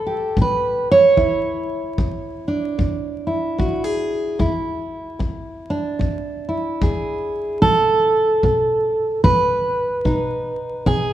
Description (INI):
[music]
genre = acoustic country blues, solo or duo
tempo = 74 BPM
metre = 4/4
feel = swing 60% on 8ths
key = E mixolydian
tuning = A4 = 438 Hz
[part]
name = fingerpicked steel-string acoustic guitar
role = melody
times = 0.0-11.1 s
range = E2 to C#5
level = -18 LUFS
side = right 2 dB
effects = none
[part]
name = kick drum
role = drums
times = 0.4-11.1 s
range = none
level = -24 LUFS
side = left 1 dB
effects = none
[sound]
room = moderate concert hall reverb, RT60 2.3 s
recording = recorded in a church or concert hall, vinyl crackle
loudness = -17 LUFS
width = side -12 dB against mid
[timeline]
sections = 0.0-11.1 A section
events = none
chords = 0.0 A7; 1.2 E7; 7.6 B7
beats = 0.37 | 1.17 1.98 2.79 3.60 | 4.41 5.21 6.02 6.83 | 7.64 8.45 9.26 10.06 | 10.87